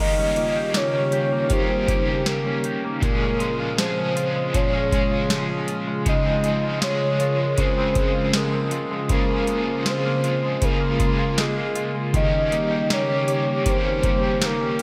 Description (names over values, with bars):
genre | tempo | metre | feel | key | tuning
dream pop | 79 BPM | 4/4 | straight | unclear | A4 = 440 Hz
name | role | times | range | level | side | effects
soft octave-layered synth lead | melody | 0.0-14.8 s | Ab4 to Eb5 | -27 LUFS | equal | chorus, tremolo, delay
cranked stack guitar | accompaniment | 0.0-14.8 s | Bb2 to Ab4 | -32 LUFS | equal | overdrive, tremolo, lush chorus
hollow soft pad | sustained chords | 0.0-14.8 s | Db3 to Ab4 | -29 LUFS | equal | chorus
semi-hollow electric guitar | arpeggios | 0.0-14.8 s | Bb2 to G4 | -30 LUFS | equal | lush chorus, delay
booming analog drum machine | drums | 0.4-14.8 s | hi-hat, kick drum, snare drum | -27 LUFS | equal | overdrive, gated reverb
vibraphone with medium hard mallets | texture | 0.4-14.8 s | F4 to G5 | -39 LUFS | equal | none
room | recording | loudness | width
moderate plate reverb, RT60 2.7 s | bright 1980s-style digital production | -22 LUFS | mono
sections
0.0-14.8 A section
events
none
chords
0.0 Eb7; 3.0 Bbm7; 6.1 Dbmaj7; 12.1 Eb7